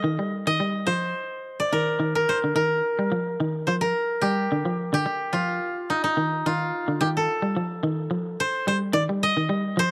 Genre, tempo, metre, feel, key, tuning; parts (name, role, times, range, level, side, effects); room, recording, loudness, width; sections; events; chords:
afrobeat; 108 BPM; 4/4; straight; A4 = 443 Hz
koto; melody; 0.0-9.9 s; Eb4 to F5; -27 LUFS; equal
semi-hollow electric guitar; arpeggios; 0.0-9.9 s; D3 to G3; -28 LUFS; equal; spring reverb
light reverb; dry, close 1970s-style studio recording; -25 LUFS; mono
0.0-9.0 A section
0.0 Eb69; 9.0 Cm (rootless)